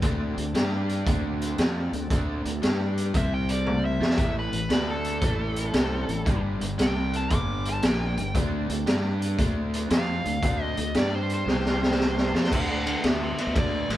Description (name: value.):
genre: blues rock power trio and southern rock.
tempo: 115 BPM.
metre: 4/4.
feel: swing 67% on 8ths.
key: D mixolydian.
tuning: A4 = 440 Hz.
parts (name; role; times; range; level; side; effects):
overdriven tonewheel organ; sustained chords; 0.0-14.0 s; G3 to D5; -39 LUFS; right 3 dB; none.
overdriven electric guitar; riff; 0.0-14.0 s; G2 to G4; -31 LUFS; equal; none.
fuzz fingered electric bass; bass; 0.0-14.0 s; G1 to G2; -29 LUFS; equal; overdrive.
raw garage drum kit; drums; 0.0-14.0 s; crash cymbal, hi-hat, kick drum, ride cymbal, snare drum, toms; -26 LUFS; equal; none.
nasal lead guitar with a parked wah; melody; 3.2-13.9 s; A4 to D6; -31 LUFS; equal; overdrive.
room: light reverb.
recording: band playing live in one room.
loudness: -23 LUFS.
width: side -14 dB against mid.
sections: 0.0-12.5 A section; 12.5-14.0 B section.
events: drum fill 3.7-4.2, 11.5-12.5; lead electric guitar solo 12.5-14.0.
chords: 0.0 D7; 0.5 G5; 1.1 D7; 2.6 G5; 3.1 C5; 3.9 Cadd11/F; 4.2 A7; 4.7 D5; 5.2 A7; 6.3 G7; 6.8 C5; 7.3 G7; 8.3 D7; 8.9 G5; 9.4 D7; 11.0 G5; 11.5 C5; 12.3 F5; 12.5 D7.